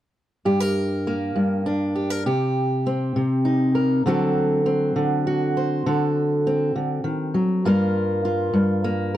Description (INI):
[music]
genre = blues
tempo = 67 BPM (dotted quarters)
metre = 12/8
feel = straight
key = unclear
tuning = A4 = 440 Hz
[part]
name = fingerpicked steel-string acoustic guitar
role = solo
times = 0.5-9.2 s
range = G2 to C5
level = -19 LUFS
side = equal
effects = none
[sound]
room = light reverb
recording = dark, warm production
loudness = -20 LUFS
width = side -12 dB against mid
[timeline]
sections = 0.5-7.6 A section; 7.6-9.2 B section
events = none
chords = 0.5 Gm; 2.3 Cm; 4.1 D7; 7.6 Gm7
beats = | 0.47 1.36 2.27 3.16 | 4.06 4.96 5.86 6.75 | 7.64 8.54